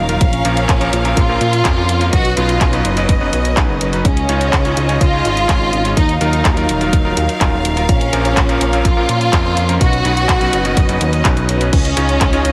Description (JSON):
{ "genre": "italo disco", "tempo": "125 BPM", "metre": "4/4", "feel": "straight", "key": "unclear", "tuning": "A4 = 440 Hz", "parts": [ { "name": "warm studio string section", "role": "sustained chords", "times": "0.0-12.5 s", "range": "Gb3 to F5", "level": "-23 LUFS", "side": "equal", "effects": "none" }, { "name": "bright electric grand piano", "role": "stabs", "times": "0.0-12.5 s", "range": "Bb2 to Db5", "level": "-24 LUFS", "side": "equal", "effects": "none" }, { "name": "fat analog bass", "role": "bass", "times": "0.0-12.5 s", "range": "Eb1 to Bb2", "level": "-20 LUFS", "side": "equal", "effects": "none" }, { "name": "house drum kit", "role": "drums", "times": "0.1-12.5 s", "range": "crash cymbal, handclaps, hi-hat", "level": "-24 LUFS", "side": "equal", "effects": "none" }, { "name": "warm symphonic violin section", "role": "melody", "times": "0.2-12.5 s", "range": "Db4 to Gb4", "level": "-22 LUFS", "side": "equal", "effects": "delay" }, { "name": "electronic kick drum", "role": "drums", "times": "0.2-12.3 s", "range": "none", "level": "-18 LUFS", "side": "equal", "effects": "none" } ], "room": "light reverb", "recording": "heavily compressed radio sound, multiband compression", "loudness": "-15 LUFS", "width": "mono", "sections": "0.0-12.5 A section", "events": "none", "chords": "0.2 Bbm; 2.1 Cbadd9; 4.0 Dbadd9; 6.0 Ebmadd9; 7.9 Bbm; 9.8 Cbadd9; 11.7 Dbadd9" }